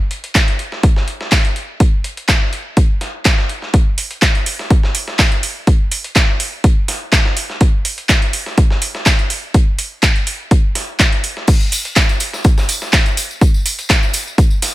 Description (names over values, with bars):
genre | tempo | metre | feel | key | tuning
house | 124 BPM | 4/4 | swing 53% on 16ths | none | none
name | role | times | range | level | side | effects
dusty soul sampler-style drum kit | drums | 0.1-14.7 s | hi-hat, snare drum | -24 LUFS | equal | sidechain pumping on hats, high-pass filter on hats, high-pass filter on snare, high-pass filter on room
electronic kick drum | drums | 0.3-14.5 s | none | -13 LUFS | equal | none
house drum kit | drums | 0.4-14.7 s | crash cymbal, handclaps, hi-hat | -17 LUFS | right 1 dB | none
tambourine | percussion | 11.5-14.7 s | none | -24 LUFS | left 1 dB | none
room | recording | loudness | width
digital ambience | none | -13 LUFS | side -17 dB against mid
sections
0.0-14.7 A section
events
none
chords
none